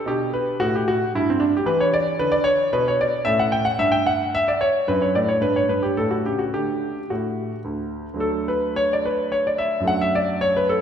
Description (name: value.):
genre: classical, baroque-style suite movement for grand piano.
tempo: 111 BPM.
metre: 3/4.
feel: rubato.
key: D major.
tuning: A4 = 441 Hz.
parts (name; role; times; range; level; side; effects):
clear concert grand piano; solo; 0.0-10.8 s; D2 to G5; -19 LUFS; equal; none.
room: wet church reverb, RT60 2.6 s.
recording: recorded in a church or concert hall.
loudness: -19 LUFS.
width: side -8 dB against mid.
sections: 0.0-8.2 A section; 8.2-10.8 B section.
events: none.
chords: 0.1 G; 1.7 E5; 3.3 A7; 4.9 D/F#; 5.4 N.C.; 6.0 A; 6.5 D; 9.9 D/F#.